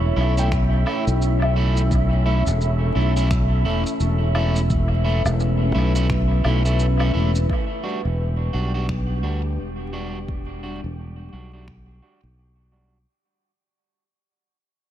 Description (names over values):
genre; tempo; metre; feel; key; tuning
ambient dub; 86 BPM; 4/4; swing 59% on 16ths; E dorian; A4 = 440 Hz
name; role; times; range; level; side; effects
deep dark ambient pad; sustained chords; 0.0-13.1 s; G3 to E5; -28 LUFS; equal; chorus, built-in reverb
felt-muted upright piano; arpeggios; 0.0-7.5 s; C#4 to G5; -34 LUFS; left 2 dB; none
fingered electric bass; bass; 0.0-13.0 s; E1 to D2; -20 LUFS; equal; tube saturation
wind-like tuned noise texture; texture; 0.0-13.1 s; E4 to G5; -34 LUFS; left 2 dB; built-in reverb
electric guitar at the edge of break-up; stabs; 0.2-13.0 s; G3 to F#4; -29 LUFS; right 2 dB; low-pass filter, dub echo
electronic shaker, finger snaps and woodblock; drums; 0.4-11.8 s; none; -34 LUFS; equal; dub echo
electronic kick drum; drums; 0.5-11.8 s; none; -25 LUFS; equal; none
room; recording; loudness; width
digital ambience; echo-heavy mix, vinyl crackle; -18 LUFS; side -11 dB against mid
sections
0.0-7.5 A section; 7.5-13.1 B section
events
fade-out 7.5-13.1; filter sweep on fingered electric bass 7.5-13.1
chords
0.0 A/E; 7.5 Em7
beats
0.51 1.21 | 1.91 2.61 3.31 4.00 | 4.70 5.40 6.09 6.79 | 7.49 8.19 8.89 9.58 | 10.28 10.98 11.68 12.37